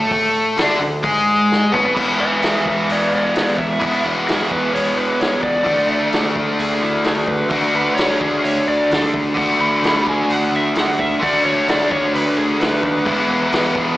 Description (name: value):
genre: blues rock power trio and southern rock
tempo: 130 BPM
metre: 4/4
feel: straight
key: E mixolydian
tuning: A4 = 442 Hz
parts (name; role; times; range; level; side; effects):
- biting overdriven guitar; riff; 0.0-14.0 s; B2 to A4; -17 LUFS; equal; slapback echo
- growling picked electric bass; bass; 0.0-13.9 s; E1 to A2; -28 LUFS; equal; overdrive
- vintage drum kit; drums; 0.1-13.9 s; crash cymbal, hi-hat, kick drum, snare drum, toms; -24 LUFS; equal; none
- overdriven slide guitar; melody; 2.2-13.7 s; E4 to B5; -21 LUFS; equal; none
room: light reverb, small room ambience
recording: live gig heard through the venue's PA, recital hall reverb, small speaker sound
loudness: -15 LUFS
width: side -16 dB against mid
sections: 0.0-2.0 A section; 2.0-14.0 B section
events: drum fill 1.5-2.0; electric slide guitar solo 2.0-14.0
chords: 0.0 D5; 2.0 E; 5.7 D; 13.1 E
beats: | 0.11 0.58 1.04 1.50 | 1.97 2.43 2.89 3.36 | 3.82 4.28 4.75 5.21 | 5.67 6.13 6.59 7.06 | 7.52 7.98 8.44 8.91 | 9.37 9.83 10.29 10.75 | 11.22 11.68 12.14 12.60 | 13.06 13.52